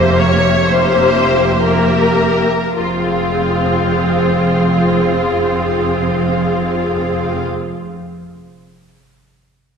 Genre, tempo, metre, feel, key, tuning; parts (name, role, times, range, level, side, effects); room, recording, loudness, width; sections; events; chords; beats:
classical, slow romantic movement for symphony orchestra; 52 BPM; 3/4; rubato; F minor; A4 = 440 Hz
warm symphonic violin section; melody; 0.0-7.4 s; E5 to F5; -24 LUFS; left 3 dB
warm symphonic violin section; second line; 0.0-7.4 s; F4 to Db5; -17 LUFS; left 3 dB
rich symphonic viola section; accompaniment; 0.0-7.4 s; Bb3 to Ab4; -18 LUFS; right 1 dB
dark symphonic cello section; bass; 0.0-7.4 s; F2; -20 LUFS; right 1 dB
rich symphonic double bass section; bass; 0.0-7.4 s; F1; -21 LUFS; right 1 dB
wet concert hall reverb, RT60 2.0 s; heard from further back in the room, faint mains hum; -12 LUFS; side -6 dB against mid
0.0-2.8 A section; 2.8-9.7 B section
slowing down 0.0-2.8
0.0 C7/F; 2.8 Fm
0.64 1.64 | 2.79 3.95 5.11 | 6.27 7.43